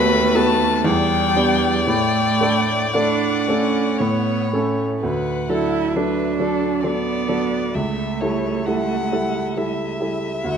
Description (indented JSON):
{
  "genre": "classical, slow romantic movement for piano quartet",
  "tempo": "56-68 BPM",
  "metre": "3/4",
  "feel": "rubato",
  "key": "D major",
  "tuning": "A4 = 440 Hz",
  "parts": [
    { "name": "dark violin", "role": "melody", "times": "0.0-10.6 s", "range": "D5 to B5", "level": "-26 LUFS", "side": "left 7 dB", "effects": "none" },
    { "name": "rich cello", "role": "second line", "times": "0.0-10.0 s", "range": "G3 to E4", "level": "-24 LUFS", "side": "right 9 dB", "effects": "none" },
    { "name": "warm violin", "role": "second line", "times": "0.0-10.6 s", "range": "A4 to F#5", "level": "-25 LUFS", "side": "left 3 dB", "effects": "none" },
    { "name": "warm grand piano", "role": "accompaniment", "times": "0.0-10.6 s", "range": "C#2 to A4", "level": "-21 LUFS", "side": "equal", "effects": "none" }
  ],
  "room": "moderate concert hall reverb, RT60 1.7 s",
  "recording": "close, detailed microphones",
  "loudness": "-17 LUFS",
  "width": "side -7 dB against mid",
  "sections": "0.0-5.0 A section; 5.0-10.6 B section",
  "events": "none",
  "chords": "0.0 B7/D#; 0.8 Em7; 1.9 D/A; 4.0 A; 5.0 D; 7.7 A7/C#",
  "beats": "0.85 | 1.87 2.94 3.99 | 5.02 5.95 6.84 | 7.74 8.65 9.55 | 10.44"
}